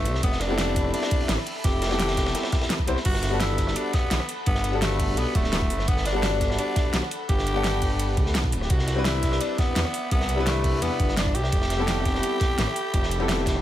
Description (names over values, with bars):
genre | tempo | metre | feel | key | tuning
liquid drum and bass | 170 BPM | 4/4 | straight | G major | A4 = 440 Hz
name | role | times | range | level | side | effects
growling tenor saxophone | melody | 0.0-13.6 s | A3 to G4 | -30 LUFS | equal | digital delay
airy breathy pad | sustained chords | 0.0-13.6 s | A4 to B5 | -36 LUFS | equal | chorus, sidechain pumping
dark detuned saw bass | bass | 0.0-13.6 s | D1 to E2 | -27 LUFS | equal | none
crunchy breakbeat drum kit | drums | 0.1-13.6 s | hi-hat, ride cymbal, snare drum | -33 LUFS | equal | high-pass filter on cymbals, studio ambience, high-pass filter on hats, high-pass filter on snare, high-pass filter on room
pop drum kit | drums | 0.1-13.6 s | crash cymbal, hi-hat, rim click, snare drum | -30 LUFS | equal | studio ambience
electronic kick drum | drums | 0.2-13.5 s | none | -25 LUFS | equal | studio ambience
clear concert grand piano | accompaniment | 0.5-13.6 s | C3 to F#5 | -29 LUFS | left 3 dB | ping-pong delay
room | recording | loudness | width
small room ambience | none | -22 LUFS | side -12 dB against mid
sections
0.0-13.6 A section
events
none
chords
0.2 Fmaj9#11; 3.1 Gmaj9; 8.7 Cmaj9; 11.5 Fmaj9#11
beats
| 0.23 0.58 0.94 1.29 | 1.64 2.00 2.35 2.70 | 3.05 3.41 3.76 4.11 | 4.47 4.82 5.17 5.53 | 5.88 6.23 6.58 6.94 | 7.29 7.64 8.00 8.35 | 8.70 9.05 9.41 9.76 | 10.11 10.47 10.82 11.17 | 11.53 11.88 12.23 12.58 | 12.94 13.29